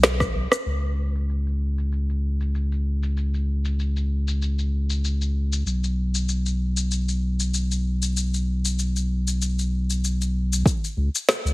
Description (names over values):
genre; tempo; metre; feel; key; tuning
organic downtempo; 96 BPM; 4/4; swing 54% on 16ths; unclear; A4 = 443 Hz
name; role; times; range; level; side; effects
warm sub bass; bass; 0.0-11.5 s; B1 to C#2; -22 LUFS; equal; none
electronic rim click, snare drum and shaker; drums; 0.0-11.5 s; none; -23 LUFS; left 1 dB; overdrive, low-pass filter on perc, low-pass filter on snare, low-pass filter on room
electronic kick drum; drums; 0.2-0.3, 10.7-10.8 s; none; -22 LUFS; equal; overdrive
room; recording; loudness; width
little or no reverb; heavily compressed radio sound; -22 LUFS; side -21 dB against mid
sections
0.7-10.7 A section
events
drum fill 0.0-0.7; filter sweep on drum 0.7-10.7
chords
none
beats
0.03 | 0.66 1.28 1.91 2.53 | 3.16 3.78 4.41 5.03 | 5.66 6.28 6.91 7.53 | 8.16 8.78 9.41 10.03 | 10.66 11.28